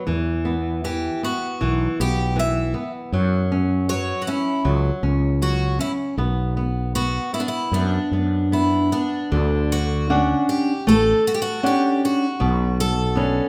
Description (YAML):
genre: fado-style ballad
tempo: 78 BPM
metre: 4/4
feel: rubato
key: B minor, D major from 9.3 s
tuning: A4 = 440 Hz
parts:
  - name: flamenco guitar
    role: accompaniment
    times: 0.0-13.5 s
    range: B2 to F#5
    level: -25 LUFS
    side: equal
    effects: none
  - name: fretless electric bass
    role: bass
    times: 0.1-13.4 s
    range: A1 to F#2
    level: -24 LUFS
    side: equal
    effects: none
  - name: picked twelve-string acoustic guitar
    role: melody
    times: 0.8-13.5 s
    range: D4 to E5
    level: -26 LUFS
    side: equal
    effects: none
room: moderate recital hall reverb, RT60 1.6 s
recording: none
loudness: -21 LUFS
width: mono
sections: 0.0-9.3 A section; 9.3-13.5 B section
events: none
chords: 0.1 E5; 3.1 F#5; 6.2 Bm; 9.3 Dmaj7; 12.4 Bmadd9